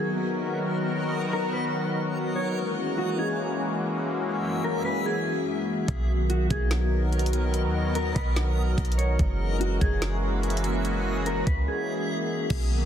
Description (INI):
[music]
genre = hip hop, atmospheric cloud-rap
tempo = 145 BPM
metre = 4/4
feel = half-time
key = unclear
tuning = A4 = 439 Hz
[part]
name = mellow electric guitar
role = melody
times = 0.0-12.1 s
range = F#4 to C#5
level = -32 LUFS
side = equal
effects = spring reverb, tape echo
[part]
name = sweeping resonant pad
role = sustained chords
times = 0.0-12.9 s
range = D#3 to A#4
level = -28 LUFS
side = left 2 dB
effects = chorus, sidechain pumping
[part]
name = backwards swelling texture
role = texture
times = 0.0-12.9 s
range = F#2 to E5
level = -35 LUFS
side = equal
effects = built-in reverb
[part]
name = clean 808-style bass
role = bass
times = 5.9-12.9 s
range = F#1 to D#2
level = -26 LUFS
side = equal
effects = none
[part]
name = smooth R&B drum kit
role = drums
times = 5.9-12.6 s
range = crash cymbal, hi-hat, kick drum, snare drum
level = -29 LUFS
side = equal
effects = none
[sound]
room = digital ambience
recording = dense, heavily limited modern master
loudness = -24 LUFS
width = side -9 dB against mid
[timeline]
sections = 0.0-12.5 A section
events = break 11.7-12.5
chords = 0.0 Bmaj7; 2.6 F#9; 5.9 Bmaj7; 9.2 F#9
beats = 0.09 0.50 | 0.92 1.33 1.74 2.16 | 2.57 2.99 3.40 3.81 | 4.23 4.64 5.05 5.47 | 5.88 6.30 6.71 7.12 | 7.54 7.95 8.37 8.78 | 9.19 9.61 10.02 10.43 | 10.85 11.26 11.68 12.09 | 12.50